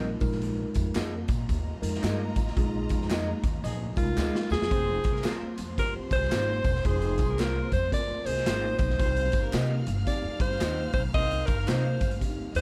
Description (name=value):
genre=uptempo 1960s-style soul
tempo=112 BPM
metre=4/4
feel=swing 62% on 8ths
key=F minor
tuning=A4 = 440 Hz
part: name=warm studio string section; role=second line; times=0.0-12.6 s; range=F4 to F6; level=-45 LUFS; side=equal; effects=none
part: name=mellow tine electric piano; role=accompaniment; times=0.0-12.6 s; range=G3 to Bb4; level=-38 LUFS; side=equal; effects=none
part: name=electric guitar through a small old amp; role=stabs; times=0.0-11.9 s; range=Eb4 to F5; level=-40 LUFS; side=equal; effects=subtle chorus
part: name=upright bass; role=bass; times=0.0-12.6 s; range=E1 to C3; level=-33 LUFS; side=equal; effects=none
part: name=raw garage drum kit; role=drums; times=0.2-12.6 s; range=hi-hat, kick drum, snare drum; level=-32 LUFS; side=equal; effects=none
part: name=tambourine and handclaps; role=percussion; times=0.2-12.4 s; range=none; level=-47 LUFS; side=equal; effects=none
part: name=warm horn section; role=second line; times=3.6-12.6 s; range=F3 to C5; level=-42 LUFS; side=equal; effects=none
part: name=clear alto saxophone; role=melody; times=4.0-12.6 s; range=F4 to Eb5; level=-32 LUFS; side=equal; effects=none
room=light reverb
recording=dark, warm production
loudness=-28 LUFS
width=mono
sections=0.0-4.7 A section; 4.7-12.6 B section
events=band accent 2.6-4.7; drum fill 4.2-4.7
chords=0.2 Bb7sus4; 4.7 Fm; 9.0 Cm